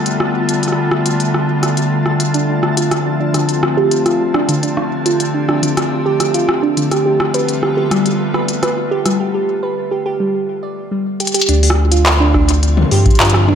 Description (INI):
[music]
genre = IDM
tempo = 105 BPM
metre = 4/4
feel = straight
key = D dorian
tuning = A4 = 440 Hz
[part]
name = icy glass pad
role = sustained chords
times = 0.0-13.6 s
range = D3 to G4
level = -19 LUFS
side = left 1 dB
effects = chorus, built-in reverb
[part]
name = flickering grainy texture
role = texture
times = 0.0-9.2 s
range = A5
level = -28 LUFS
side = right 2 dB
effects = built-in reverb
[part]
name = organic electronic drum kit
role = drums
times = 0.1-13.6 s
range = handclaps, hi-hat, rim click, toms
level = -18 LUFS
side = left 1 dB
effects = none
[part]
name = harp-like synth pluck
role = arpeggios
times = 2.3-13.5 s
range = D3 to D5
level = -17 LUFS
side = right 2 dB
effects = chorus, vintage 12-bit sampler grit, ping-pong delay
[part]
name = warm sub bass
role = bass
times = 11.5-13.6 s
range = D2 to G2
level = -13 LUFS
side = equal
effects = none
[part]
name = electronic kick drum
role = drums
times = 12.3-13.2 s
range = none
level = -15 LUFS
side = equal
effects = none
[sound]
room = moderate echo chamber reverb, RT60 2.4 s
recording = none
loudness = -13 LUFS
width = side -8 dB against mid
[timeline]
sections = 0.0-11.5 A section; 11.5-13.6 B section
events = filter sweep on ambient pad 0.0-11.5; break 9.2-11.5; drum fill 11.2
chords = 0.0 G9; 2.3 Dm7; 6.9 G9; 11.5 Dm7